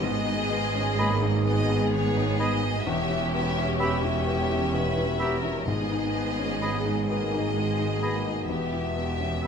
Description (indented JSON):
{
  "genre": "cinematic",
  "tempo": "42 BPM (dotted quarters)",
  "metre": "6/8",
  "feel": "rubato",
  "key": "G# harmonic minor",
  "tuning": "A4 = 439 Hz",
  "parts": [
    { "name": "rich studio violin section", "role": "melody", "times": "0.0-9.5 s", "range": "C#5 to E5", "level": "-33 LUFS", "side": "left 3 dB", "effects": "none" },
    { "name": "rich studio violin section", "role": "second line", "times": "0.0-9.5 s", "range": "G4 to B4", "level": "-34 LUFS", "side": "left 2 dB", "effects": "none" },
    { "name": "clear grand piano", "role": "accompaniment", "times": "0.0-9.5 s", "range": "E2 to E4", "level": "-31 LUFS", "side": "left 4 dB", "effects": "none" },
    { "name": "rich studio viola section", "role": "accompaniment", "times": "0.0-9.5 s", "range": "G#3 to C#4", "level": "-34 LUFS", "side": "right 2 dB", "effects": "none" },
    { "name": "dark French horn section", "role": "sustained chords", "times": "0.0-9.5 s", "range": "B2 to G#4", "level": "-33 LUFS", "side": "left 5 dB", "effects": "none" },
    { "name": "rich studio double bass section", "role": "bass", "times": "0.0-9.5 s", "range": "E1 to G#1", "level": "-30 LUFS", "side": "right 5 dB", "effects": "none" },
    { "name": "warm studio cello section", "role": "bass", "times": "0.0-9.5 s", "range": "E2 to G#2", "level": "-33 LUFS", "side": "right 3 dB", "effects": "none" },
    { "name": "clear clarinet", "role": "second line", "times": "1.0-9.5 s", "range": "G4 to G#4", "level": "-38 LUFS", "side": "left 2 dB", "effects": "none" },
    { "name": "clear oboe", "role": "second line", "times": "1.0-9.5 s", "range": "D#5 to E5", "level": "-36 LUFS", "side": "right 1 dB", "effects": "none" },
    { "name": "mellow silver concert flute", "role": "second line", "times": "1.0-9.5 s", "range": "B5", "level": "-35 LUFS", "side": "equal", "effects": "none" },
    { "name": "timpani", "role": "percussion", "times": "5.7-7.0 s", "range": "G#2", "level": "-35 LUFS", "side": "equal", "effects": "none" }
  ],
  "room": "light reverb",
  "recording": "close, detailed microphones",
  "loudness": "-24 LUFS",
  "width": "side -6 dB against mid",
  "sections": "0.0-9.5 A section",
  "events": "none",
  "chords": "0.0 G#m; 2.9 Em; 5.7 G#m; 8.5 Em"
}